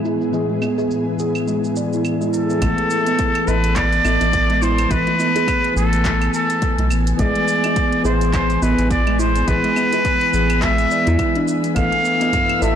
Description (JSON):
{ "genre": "organic downtempo", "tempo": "105 BPM", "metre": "4/4", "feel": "swing 57% on 16ths", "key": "unclear", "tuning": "A4 = 443 Hz", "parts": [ { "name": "mellow tine electric piano", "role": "accompaniment", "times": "0.0-12.8 s", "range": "A2 to A5", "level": "-23 LUFS", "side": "left 3 dB", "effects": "medium stereo tremolo, sidechain pumping, ping-pong delay, shimmer reverb" }, { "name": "granular cloud pad", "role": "sustained chords", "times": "0.0-12.8 s", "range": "A2 to G#5", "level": "-27 LUFS", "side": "right 1 dB", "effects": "built-in reverb, sidechain pumping, shimmer reverb" }, { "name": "kalimba", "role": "arpeggios", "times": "0.0-12.8 s", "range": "E3 to A4", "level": "-24 LUFS", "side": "right 3 dB", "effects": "ping-pong delay, shimmer reverb" }, { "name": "organic electronic drum kit", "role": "drums", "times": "0.0-12.8 s", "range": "claves, handclaps, hi-hat, shaker", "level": "-30 LUFS", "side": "right 2 dB", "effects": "small room ambience" }, { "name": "trumpet with straight mute", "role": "melody", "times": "2.3-12.8 s", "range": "A4 to F5", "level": "-19 LUFS", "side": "left 1 dB", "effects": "ping-pong delay, shimmer reverb" }, { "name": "round analog bass", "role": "bass", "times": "2.6-12.8 s", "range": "A1 to E2", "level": "-20 LUFS", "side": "equal", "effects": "none" }, { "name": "electronic kick drum", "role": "drums", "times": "2.6-12.5 s", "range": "none", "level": "-23 LUFS", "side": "equal", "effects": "overdrive, small room ambience" }, { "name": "drifting glass-harmonics texture", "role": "texture", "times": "12.0-12.8 s", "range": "E3 to E6", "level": "-28 LUFS", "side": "left 2 dB", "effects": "chorus, built-in reverb" }, { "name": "tabla", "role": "percussion", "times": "12.2-12.8 s", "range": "none", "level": "-30 LUFS", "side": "left 2 dB", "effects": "none" } ], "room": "light reverb", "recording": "blown-out, overdriven recording, overdrive, low-pass filter", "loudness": "-15 LUFS", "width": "side -9 dB against mid", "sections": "0.0-2.6 A section; 2.6-12.8 B section", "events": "none", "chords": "0.0 E/A; 2.6 Asus2; 7.2 E/A; 11.8 Asus2", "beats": "| 0.34 0.91 1.48 2.05 | 2.62 3.19 3.77 4.34 | 4.91 5.48 6.05 6.62 | 7.19 7.76 8.34 8.91 | 9.48 10.05 10.62 11.19 | 11.77 12.34" }